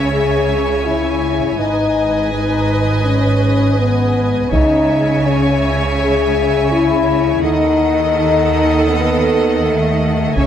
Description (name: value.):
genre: cinematic, epic orchestral film score.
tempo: 82 BPM (dotted quarters).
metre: 12/8.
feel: straight.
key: C# minor.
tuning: A4 = 441 Hz.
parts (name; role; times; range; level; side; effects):
warm symphonic violin section; melody; 0.0-10.5 s; F#5 to G#5; -27 LUFS; left 3 dB; none.
clear symphonic violin section; second line; 0.0-10.5 s; D#5 to E5; -26 LUFS; left 2 dB; none.
warm symphonic viola section; accompaniment; 0.0-10.5 s; A4 to C#5; -22 LUFS; right 3 dB; none.
mellow French horn section; sustained chords; 0.0-10.5 s; A3 to G#4; -16 LUFS; left 4 dB; none.
rich symphonic cello section; bass; 0.0-10.5 s; G#2 to D#3; -20 LUFS; right 2 dB; none.
warm symphonic double bass section; bass; 0.0-10.5 s; G#1 to D#2; -21 LUFS; right 3 dB; none.
taiko ensemble; drums; 4.5-5.5, 10.4-10.5 s; none; -18 LUFS; right 1 dB; none.
room: moderate scoring stage reverb, RT60 2.0 s.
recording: none.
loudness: -13 LUFS.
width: side -9 dB against mid.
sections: 0.0-10.5 A section.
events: none.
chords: 0.0 C#m; 1.6 G#m; 4.5 C#m; 7.4 D#dim.